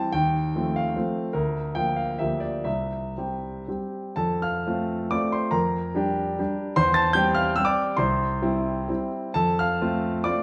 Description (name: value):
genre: classical, romantic triple-time dance for piano with dotted rhythms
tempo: 112-163 BPM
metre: 3/4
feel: rubato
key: F major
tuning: A4 = 440 Hz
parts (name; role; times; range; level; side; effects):
- warm grand piano; solo; 0.0-10.4 s; C2 to A6; -25 LUFS; equal; none
room: wet recital hall reverb, RT60 1.5 s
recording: none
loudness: -25 LUFS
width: mono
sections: 0.0-4.2 A section; 4.2-10.4 B section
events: none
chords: 0.1 F7/Eb; 1.3 Bb/D; 2.2 Gm7/D; 2.7 C; 4.2 F; 5.5 Gm7/F; 6.8 C/E; 8.0 C; 9.4 F